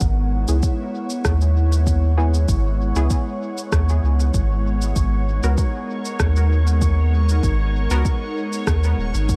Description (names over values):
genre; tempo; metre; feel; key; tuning
ambient dub; 97 BPM; 4/4; swing 53% on 16ths; unclear; A4 = 438 Hz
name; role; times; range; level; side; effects
airy breathy pad; sustained chords; 0.0-9.4 s; G#3 to F#5; -29 LUFS; equal; chorus
soft dub sub bass; bass; 0.0-9.4 s; D#1 to D#2; -20 LUFS; equal; none
electronic cabasa and rim click; drums; 0.0-9.4 s; none; -31 LUFS; equal; dub echo
electronic kick drum; drums; 0.0-9.4 s; none; -24 LUFS; equal; none
bubbling stepped-filter texture; texture; 0.0-9.4 s; C#5 to C#6; -37 LUFS; equal; chorus, built-in reverb
filtered dub chord stab; stabs; 0.5-8.0 s; B3 to A#4; -33 LUFS; equal; chorus, dub echo
room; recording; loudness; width
digital ambience; none; -20 LUFS; mono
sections
0.0-9.4 A section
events
none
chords
0.0 F#9sus4/G#; 5.0 G#m9